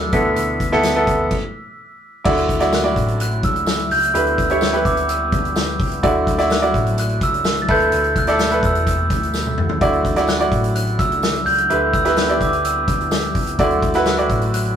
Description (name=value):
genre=piano-driven pop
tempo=127 BPM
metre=4/4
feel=straight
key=D major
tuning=A4 = 439 Hz
part: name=bright grand piano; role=accompaniment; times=0.0-14.8 s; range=D3 to D5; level=-19 LUFS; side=right 1 dB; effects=none
part: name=warm analog pad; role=sustained chords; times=0.0-14.8 s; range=B2 to E4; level=-30 LUFS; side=left 2 dB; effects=chorus
part: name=hollow-body short-scale picked electric bass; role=bass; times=0.0-14.7 s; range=E1 to D2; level=-25 LUFS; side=left 1 dB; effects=none
part: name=glockenspiel with rubber mallets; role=melody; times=0.1-14.6 s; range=D6 to B6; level=-22 LUFS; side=right 2 dB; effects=none
part: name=loose indie drum kit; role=drums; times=0.1-14.8 s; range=crash cymbal, hi-hat, kick drum, snare drum, toms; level=-22 LUFS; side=left 1 dB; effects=none
part: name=tambourine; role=percussion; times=0.8-14.2 s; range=none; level=-36 LUFS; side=left 5 dB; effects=none
room=moderate studio ambience, RT60 0.5 s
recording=rough rehearsal-room recording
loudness=-15 LUFS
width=side -8 dB against mid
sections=0.0-2.3 A section; 2.3-14.8 B section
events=stop 1.3-2.3; drum fill 9.3-9.8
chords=0.1 Asus2/D; 2.3 Dadd9; 4.1 G6/D; 6.0 Dadd9; 7.7 Asus2; 9.8 Dadd9; 11.7 G6/D; 13.6 Dadd9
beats=| 0.37 0.84 1.31 1.78 | 2.25 2.73 3.20 3.67 | 4.14 4.61 5.09 5.56 | 6.03 6.50 6.97 7.45 | 7.92 8.39 8.86 9.34 | 9.81 10.28 10.75 11.23 | 11.70 12.17 12.64 13.12 | 13.59 14.06 14.54